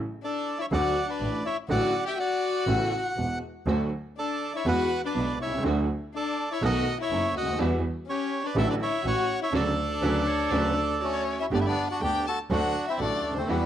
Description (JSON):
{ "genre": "tango", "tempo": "122 BPM", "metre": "4/4", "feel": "rubato", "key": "D major", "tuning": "A4 = 440 Hz", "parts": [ { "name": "bandoneon", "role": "melody", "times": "0.2-13.7 s", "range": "G3 to G5", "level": "-29 LUFS", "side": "right 2 dB", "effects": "cassette tape" }, { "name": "warm violin", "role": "second line", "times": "0.2-13.7 s", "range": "C#4 to A5", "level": "-30 LUFS", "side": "left 7 dB", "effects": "cassette tape, plate reverb" }, { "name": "clear baby grand piano", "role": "accompaniment", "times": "0.7-13.7 s", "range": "E1 to G4", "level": "-30 LUFS", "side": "right 2 dB", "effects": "cassette tape, plate reverb" }, { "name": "clear double bass", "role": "bass", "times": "0.7-13.7 s", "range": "E1 to E2", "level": "-30 LUFS", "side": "right 1 dB", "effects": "none" }, { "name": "rich chamber string section", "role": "stabs", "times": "3.7-13.7 s", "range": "G3 to A4", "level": "-36 LUFS", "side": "right 6 dB", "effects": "cassette tape, plate reverb" }, { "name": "bright clarinet", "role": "second line", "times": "10.0-11.5 s", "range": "F#4 to C#5", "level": "-35 LUFS", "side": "right 7 dB", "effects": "cassette tape" } ], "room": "moderate small room reverb, RT60 0.5 s", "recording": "home recording on cassette", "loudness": "-24 LUFS", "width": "side -10 dB against mid", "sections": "0.0-11.5 A section; 11.5-13.7 B section", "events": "band accent 9.5-11.5", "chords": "0.0 F#m7/A (rootless); 0.7 D; 2.7 Aadd9; 3.7 D; 4.7 Eadd9; 5.6 D; 6.6 B7; 7.6 Emadd9; 8.6 D/A; 9.0 A; 9.5 Dmaj7; 11.5 Gadd9; 12.5 D" }